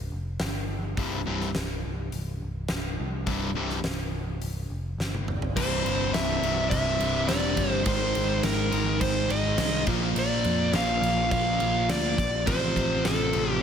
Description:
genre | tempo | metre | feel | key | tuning
hard rock | 104 BPM | 4/4 | straight | unclear | A4 = 439 Hz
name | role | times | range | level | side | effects
picked electric bass | bass | 0.0-13.6 s | C1 to F2 | -31 LUFS | equal | none
huge arena drum kit | drums | 0.4-13.5 s | crash cymbal, hi-hat, kick drum, snare drum, toms | -31 LUFS | equal | none
distorted electric guitar | riff | 1.0-13.6 s | C2 to Bb3 | -30 LUFS | left 12 dB | overdrive
sludgy distorted guitar | riff | 1.0-13.6 s | C2 to Bb3 | -31 LUFS | right 12 dB | overdrive
dark smooth lead guitar | melody | 5.6-13.6 s | A4 to F5 | -28 LUFS | right 1 dB | overdrive, tape echo
percussive tonewheel organ | sustained chords | 5.6-13.6 s | F3 to D5 | -39 LUFS | right 1 dB | none
room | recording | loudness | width
light reverb, small room ambience | none | -24 LUFS | side -8 dB against mid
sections
0.0-5.6 A section; 5.6-13.6 B section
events
drum fill 5.0-5.6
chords
0.0 C5; 5.6 C; 7.9 Ab; 9.9 Bb; 12.5 F/A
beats
0.40 | 0.97 1.54 2.12 2.69 | 3.26 3.84 4.41 4.99 | 5.56 6.13 6.71 7.28 | 7.86 8.43 9.01 9.58 | 10.16 10.73 11.31 11.89 | 12.47 13.04 13.62

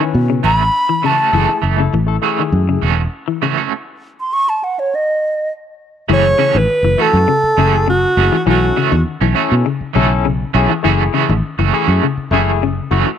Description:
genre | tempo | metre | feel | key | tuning
afrobeat | 101 BPM | 4/4 | straight | F# dorian | A4 = 435 Hz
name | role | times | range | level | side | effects
barky tine electric piano | accompaniment | 0.0-13.1 s | A3 to B4 | -21 LUFS | left 12 dB | overdrive, fast tremolo
semi-hollow electric guitar | arpeggios | 0.0-13.1 s | C#3 to E3 | -20 LUFS | left 9 dB | none
electric guitar at the edge of break-up | stabs | 0.0-13.1 s | E3 to F#4 | -19 LUFS | right 12 dB | tremolo
fingered electric bass | bass | 0.1-13.0 s | E1 to B2 | -15 LUFS | equal | none
mellow hollow silver concert flute | melody | 0.4-5.5 s | C#5 to C#6 | -15 LUFS | equal | none
clear alto saxophone | melody | 6.1-9.0 s | F#4 to C#5 | -14 LUFS | right 2 dB | none
room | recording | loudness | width
moderate spring reverb, RT60 1.9 s, small room ambience | 1960s-style stereo with parts hard left and right | -12 LUFS | side -9 dB against mid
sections
0.0-6.1 A section; 6.1-13.2 B section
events
flute solo 0.0-6.1; stop 3.7-6.1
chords
0.0 B9sus4; 1.3 F#m7; 3.7 N.C.; 6.1 F#m7; 8.5 B9sus4; 10.8 F#m7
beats
0.15 0.74 | 1.34 1.93 2.53 3.12 | 3.71 4.31 4.90 5.50 | 6.09 6.68 7.28 7.87 | 8.46 9.05 9.65 10.24 | 10.83 11.43 12.02 12.61

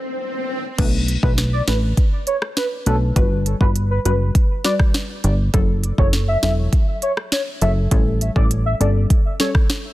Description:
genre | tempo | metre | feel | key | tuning
dancehall | 101 BPM | 4/4 | straight | B minor | A4 = 440 Hz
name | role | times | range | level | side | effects
swell | sound effects | 0.0-0.8 s | none | -26 LUFS | left 1 dB | none
soft round pluck | accompaniment | 0.8-9.6 s | F#3 to B4 | -26 LUFS | left 3 dB | chorus, sidechain pumping
plucky analog bass | bass | 0.8-9.1 s | E1 to B1 | -19 LUFS | equal | none
afro-pop drum kit | drums | 0.8-9.8 s | crash cymbal, hi-hat, kick drum, rim click, snare drum | -18 LUFS | equal | none
warm velvety synth lead | melody | 1.2-9.5 s | A4 to E5 | -25 LUFS | equal | chorus, digital delay
room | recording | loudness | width
digital ambience | dense, heavily limited modern master | -16 LUFS | side -16 dB against mid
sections
0.8-9.9 A section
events
break 0.0-0.8; swell 0.0-0.8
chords
0.0 N.C.; 0.8 Bm7; 3.2 Gmaj7; 5.5 F#m7; 7.9 A7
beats
0.19 | 0.79 1.38 1.97 2.57 | 3.16 3.76 4.35 4.94 | 5.54 6.13 6.73 7.32 | 7.92 8.51 9.10 9.70

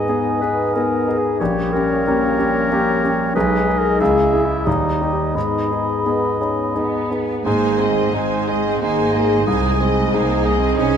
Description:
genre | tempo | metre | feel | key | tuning
classical, romantic movement for piano and orchestra | 91 BPM | 3/4 | rubato | G# minor, Ab major from 7.5 s | A4 = 440 Hz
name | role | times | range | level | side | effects
clear concert grand piano | melody | 0.0-11.0 s | Bb1 to G#4 | -20 LUFS | left 1 dB | none
mellow hollow concert flute | second line | 0.0-11.0 s | G5 to B5 | -26 LUFS | left 2 dB | none
warm clarinet | second line | 0.0-6.7 s | D#4 to D#5 | -24 LUFS | left 3 dB | none
warm oboe | second line | 0.0-11.0 s | C5 to E5 | -27 LUFS | right 3 dB | none
warm bassoon | accompaniment | 0.0-11.0 s | G3 to D#4 | -25 LUFS | right 4 dB | none
dark French horn section | sustained chords | 0.0-11.0 s | G3 to Ab4 | -26 LUFS | left 5 dB | none
warm symphonic cello section | bass | 6.8-11.0 s | Ab3 to Db4 | -24 LUFS | right 2 dB | none
rich symphonic violin section | melody | 7.5-11.0 s | Eb5 to Ab5 | -30 LUFS | equal | none
warm symphonic violin section | second line | 7.5-11.0 s | C5 to Eb5 | -29 LUFS | right 2 dB | none
rich symphonic viola section | accompaniment | 7.5-11.0 s | Eb4 to Ab4 | -28 LUFS | right 5 dB | none
rich symphonic double bass section | bass | 7.5-11.0 s | Ab1 to C2 | -24 LUFS | right 4 dB | none
room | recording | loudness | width
moderate scoring stage reverb, RT60 1.9 s | close, detailed microphones | -16 LUFS | side -8 dB against mid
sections
0.0-7.5 A section; 7.5-11.0 B section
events
none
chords
0.0 G#m; 1.4 Gdim/Bb; 3.4 G#m/B; 4.0 C#m; 4.7 D#; 5.4 G#m; 7.5 Ab; 9.5 Ab/C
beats
0.08 0.74 | 1.40 2.05 2.70 | 3.35 4.00 4.66 | 5.35 6.06 6.76 | 7.46 8.14 8.82 | 9.47 10.13 10.78

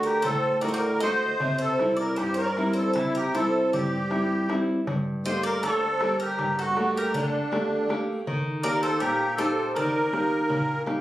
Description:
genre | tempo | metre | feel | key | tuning
greek folk, Greek bouzouki band | 158 BPM (eighths) | 9/8 | straight | unclear | A4 = 440 Hz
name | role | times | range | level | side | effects
Greek bouzouki | melody | 0.0-10.8 s | A4 to Eb5 | -29 LUFS | equal | none
musette accordion | second line | 0.0-10.8 s | D4 to C5 | -27 LUFS | right 1 dB | none
nylon-string guitar | accompaniment | 0.0-11.0 s | G2 to G4 | -27 LUFS | equal | none
darbuka | percussion | 0.2-11.0 s | none | -33 LUFS | equal | none
room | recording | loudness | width
moderate small room reverb, RT60 0.5 s | recorded on a phone in the room, studio reverb | -23 LUFS | side -14 dB against mid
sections
0.0-11.0 A section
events
speeding up 0.0-11.0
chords
0.0 D; 1.4 C; 4.9 Gmadd9; 8.3 Eb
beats
0.24 0.64 1.02 | 1.41 1.80 2.19 2.57 2.96 3.34 3.73 4.11 4.49 | 4.87 5.25 5.63 6.01 6.39 6.77 7.15 7.52 7.90 | 8.27 8.64 9.02 9.39 9.76 10.13 10.50 10.87

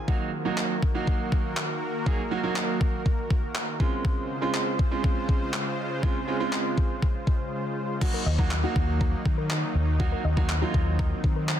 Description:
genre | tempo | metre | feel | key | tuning
dance-pop | 121 BPM | 4/4 | straight | Eb dorian | A4 = 436 Hz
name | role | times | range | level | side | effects
clear concert grand piano | accompaniment | 0.0-11.2 s | Gb3 to Ab4 | -30 LUFS | right 4 dB | sidechain pumping
supersaw pad | sustained chords | 0.0-11.6 s | Db3 to C5 | -33 LUFS | equal | sidechain pumping
crisp 8-bit digital drum machine | drums | 0.1-11.6 s | crash cymbal, handclaps, kick drum | -26 LUFS | equal | overdrive
soft round pluck | arpeggios | 8.0-11.4 s | Gb4 to Gb6 | -38 LUFS | left 6 dB | chorus, sidechain pumping, ping-pong delay
vintage muted fingered electric bass | bass | 8.3-11.6 s | Eb2 to Eb3 | -26 LUFS | equal | sidechain pumping
room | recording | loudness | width
light reverb, digital ambience | dense, heavily limited modern master | -24 LUFS | side -10 dB against mid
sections
0.0-8.0 A section; 8.0-11.6 B section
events
break 7.5-8.0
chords
0.1 Ebm; 3.8 Dbmaj7; 8.0 Ebm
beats
| 0.08 0.58 1.07 1.57 | 2.06 2.56 3.06 3.55 | 4.05 4.54 5.04 5.54 | 6.03 6.53 7.02 7.52 | 8.01 8.51 9.01 9.50 | 10.00 10.49 10.99 11.48

